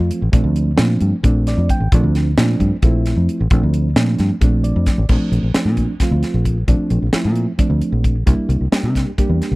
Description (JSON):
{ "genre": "electric jazz fusion", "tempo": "264 BPM (eighths)", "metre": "7/8", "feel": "straight", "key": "Bb lydian", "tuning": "A4 = 440 Hz", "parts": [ { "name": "reed electric piano", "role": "accompaniment", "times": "0.0-9.6 s", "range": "F3 to G5", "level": "-20 LUFS", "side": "right 2 dB", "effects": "phaser" }, { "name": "fingered electric bass", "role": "bass", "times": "0.0-9.6 s", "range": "A1 to C3", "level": "-16 LUFS", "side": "equal", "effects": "none" }, { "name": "crisp fusion drum kit", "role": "drums", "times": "0.1-9.5 s", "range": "crash cymbal, hi-hat, kick drum, snare drum", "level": "-18 LUFS", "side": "equal", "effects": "none" } ], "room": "small room ambience", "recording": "dry, close 1970s-style studio recording", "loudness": "-14 LUFS", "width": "side -21 dB against mid", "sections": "0.0-5.1 A section; 5.1-9.6 B section", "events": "reed electric piano fill 1.2-1.9, 4.4-5.1", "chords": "0.0 Bbmaj9; 8.3 C9", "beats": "0.11 | 0.34 0.56 0.79 1.02 1.25 1.47 1.70 | 1.93 2.15 2.38 2.61 2.83 3.06 3.29 | 3.51 3.74 3.97 4.19 4.42 4.65 4.87 | 5.10 5.33 5.55 5.78 6.01 6.24 6.46 | 6.69 6.92 7.14 7.37 7.60 7.83 8.05 | 8.28 8.51 8.73 8.96 9.19 9.41" }